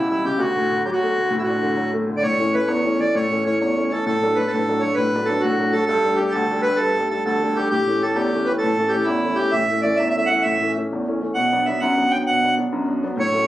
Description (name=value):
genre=celtic folk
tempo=132 BPM (dotted quarters)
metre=12/8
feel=straight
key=unclear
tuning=A4 = 440 Hz
part: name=accordion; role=melody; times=0.0-13.5 s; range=E4 to G5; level=-20 LUFS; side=right 1 dB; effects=none
part: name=clear upright piano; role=accompaniment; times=0.0-13.5 s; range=C#2 to D4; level=-22 LUFS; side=left 1 dB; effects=none
room=moderate small room reverb, RT60 0.5 s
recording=recorded on a phone in the room, club reverb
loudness=-18 LUFS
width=side -14 dB against mid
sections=0.0-2.2 A section; 2.2-13.5 B section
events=none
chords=0.4 D; 2.2 A; 4.1 D/A; 5.9 Gsus2; 7.7 A; 11.4 Bm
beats=| 0.40 0.86 1.32 1.77 | 2.23 2.69 3.15 3.60 | 4.06 4.52 4.97 5.43 | 5.89 6.34 6.80 7.26 | 7.71 8.17 8.62 9.08 | 9.53 9.99 10.44 10.90 | 11.35 11.80 12.26 12.71 | 13.16